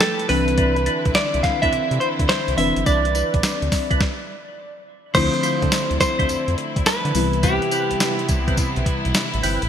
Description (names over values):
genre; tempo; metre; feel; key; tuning
R&B, new jack swing; 105 BPM; 4/4; swing 66% on 16ths; unclear; A4 = 440 Hz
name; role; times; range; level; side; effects
direct-recorded clean electric guitar; melody; 0.0-8.3 s; G4 to F5; -22 LUFS; right 1 dB; lush chorus, ping-pong delay
mellow FM electric piano; accompaniment; 0.0-9.7 s; C3 to B4; -26 LUFS; left 5 dB; chorus
warm studio string section; sustained chords; 0.0-9.7 s; C3 to B4; -28 LUFS; equal; none
crisp 8-bit digital drum machine; drums; 0.0-9.7 s; crash cymbal, hi-hat, kick drum, snare drum, tambourine; -22 LUFS; equal; gated reverb
percussive tonewheel organ; stabs; 0.3-9.6 s; C4 to C5; -28 LUFS; right 1 dB; chorus vibrato, slow rotary speaker
round analog bass; bass; 0.3-9.7 s; F1 to D3; -24 LUFS; equal; none
room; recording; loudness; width
light reverb; bright 1980s-style digital production; -17 LUFS; side -9 dB against mid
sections
0.0-5.1 A section; 5.1-9.7 B section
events
stop 4.0-5.1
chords
0.3 Cmaj9; 5.1 Dm9; 7.1 Cmaj7